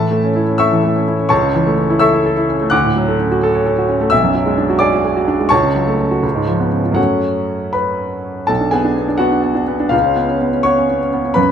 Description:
classical, virtuoso piano study; 84 BPM (dotted quarters); 6/8; rubato; F# minor; A4 = 440 Hz
clear grand piano; solo; 0.0-11.5 s; B1 to F#6; -13 LUFS; equal
moderate recital hall reverb, RT60 1.2 s; close, detailed microphones; -13 LUFS; side -8 dB against mid
0.0-8.5 A section; 8.5-11.5 B section
0.0 A; 1.3 A/C#; 2.7 Dmaj7; 4.1 G#m7b5/B; 5.5 F#m/C#; 6.2 C#7; 7.0 F#m; 8.5 Bm7; 9.9 C#7
0.59 | 1.30 2.01 | 2.71 3.41 | 4.11 4.81 | 5.52 6.23 | 6.97 7.74 | 8.49 9.21 | 9.93 10.66 | 11.38

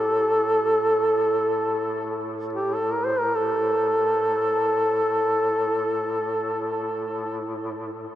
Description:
caucasian folk, Caucasian lament; free time; A4 = 440 Hz
mellow duduk; melody; 0.0-7.6 s; G4 to C5; -22 LUFS; equal
clear duduk; drone; 0.0-8.2 s; A2; -32 LUFS; equal
wet huge ambient reverb, RT60 7.8 s; in a vast, echoing space; -21 LUFS; side -12 dB against mid
0.0-8.2 A section
free time

